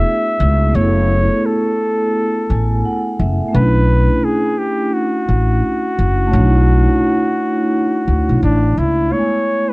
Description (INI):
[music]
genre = lo-fi hip hop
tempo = 86 BPM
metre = 4/4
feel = swing 62% on 16ths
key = F# minor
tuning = A4 = 440 Hz
[part]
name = trumpet with bucket mute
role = melody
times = 0.0-9.7 s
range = D4 to E5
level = -19 LUFS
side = equal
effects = low-pass filter
[part]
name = vibraphone with soft mallets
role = accompaniment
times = 0.0-9.7 s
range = G#3 to G#5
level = -18 LUFS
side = equal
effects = low-pass filter
[part]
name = upright bass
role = bass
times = 0.0-9.1 s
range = F#1 to D2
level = -14 LUFS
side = equal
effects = tube saturation
[sound]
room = light reverb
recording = worn, warbling old tape, cassette tape, warbly pitch drift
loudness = -13 LUFS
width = side -24 dB against mid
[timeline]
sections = 0.0-9.1 A section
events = vibraphone fill 2.1-3.5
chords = 0.0 F#m11; 3.5 Bm11; 9.1 F#m11 (rootless)